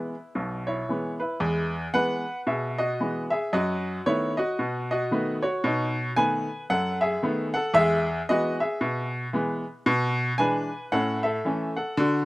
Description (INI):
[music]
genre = jazz, stride piano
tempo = 114 BPM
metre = 4/4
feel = swing 59% on 8ths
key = E major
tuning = A4 = 440 Hz
[part]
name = bright upright piano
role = solo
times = 0.0-12.2 s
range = B1 to G#5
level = -24 LUFS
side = equal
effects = none
[sound]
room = little or no reverb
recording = recorded outdoors, with no room sound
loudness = -24 LUFS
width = side -19 dB against mid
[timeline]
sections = 0.0-1.4 A section; 1.4-12.2 B section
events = none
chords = 0.0 E; 3.5 B7/F#; 5.6 B13; 7.8 E; 9.9 E7/B; 10.9 A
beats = 0.37 0.90 | 1.43 1.96 2.48 3.01 | 3.54 4.07 4.59 5.12 | 5.65 6.17 6.70 7.23 | 7.76 8.29 8.81 9.34 | 9.87 10.40 10.93 11.45 | 11.98